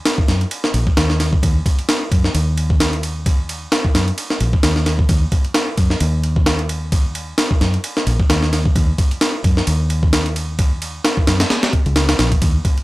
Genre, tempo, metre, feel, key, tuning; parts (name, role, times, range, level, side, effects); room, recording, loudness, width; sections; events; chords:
breakbeat, breaks; 131 BPM; 4/4; swing 56% on 16ths; Eb minor; A4 = 440 Hz
breakbeat sampler-style drum kit; drums; 0.1-12.8 s; kick drum, ride cymbal, snare drum; -16 LUFS; equal
fingered electric bass; bass; 0.3-12.6 s; Bb1 to Gb2; -18 LUFS; equal
little or no reverb; dry, gritty hardware recording; -15 LUFS; side -19 dB against mid
0.0-12.8 A section